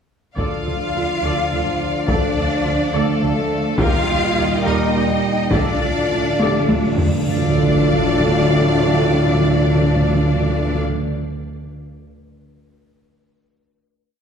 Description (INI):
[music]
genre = cinematic, epic orchestral film score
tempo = 70 BPM (dotted quarters)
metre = 6/8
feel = straight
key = D phrygian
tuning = A4 = 440 Hz
[part]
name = rich symphonic violin section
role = melody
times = 0.4-10.8 s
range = A4 to F5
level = -26 LUFS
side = left 3 dB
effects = none
[part]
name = warm symphonic violin section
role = second line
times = 0.4-10.8 s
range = D5 to G5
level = -27 LUFS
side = left 3 dB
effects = none
[part]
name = warm symphonic viola section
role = accompaniment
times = 0.4-10.8 s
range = Eb4 to D5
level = -27 LUFS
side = equal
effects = none
[part]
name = bright trombone section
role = sustained chords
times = 0.4-10.8 s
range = A2 to A3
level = -25 LUFS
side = right 3 dB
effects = none
[part]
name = mellow French horn section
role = sustained chords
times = 0.4-10.8 s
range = A3 to G4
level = -25 LUFS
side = left 4 dB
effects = none
[part]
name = clear symphonic double bass section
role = bass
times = 0.4-10.8 s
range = D2 to Eb2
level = -26 LUFS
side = right 2 dB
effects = none
[part]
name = dark tuba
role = bass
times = 0.4-10.8 s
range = D2 to Eb2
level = -25 LUFS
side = right 2 dB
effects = none
[part]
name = rich symphonic cello section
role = bass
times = 0.4-10.8 s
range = A3 to F4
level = -24 LUFS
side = right 1 dB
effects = none
[part]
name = taiko ensemble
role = drums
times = 0.4-7.2 s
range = none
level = -22 LUFS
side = left 1 dB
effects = none
[part]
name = timpani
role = percussion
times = 5.5-10.8 s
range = D3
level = -21 LUFS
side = right 1 dB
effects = none
[part]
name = cymbal swell and sub drop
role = sound effects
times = 6.8-9.0 s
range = none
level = -30 LUFS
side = left 1 dB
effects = none
[sound]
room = wet scoring stage reverb, RT60 2.0 s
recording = heard from further back in the room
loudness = -15 LUFS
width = side -7 dB against mid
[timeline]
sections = 0.4-7.3 theme; 7.3-10.7 final chord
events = timpani fill 5.5-7.3; drum fill 6.4-7.3; cymbal swell 6.8-7.3; impact 7.3-9.0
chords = 0.4 Dm; 3.8 Eb; 5.5 Dm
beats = | 0.37 1.23 | 2.09 2.94 | 3.80 4.66 | 5.53 6.40 | 7.27 8.12 | 8.98 9.84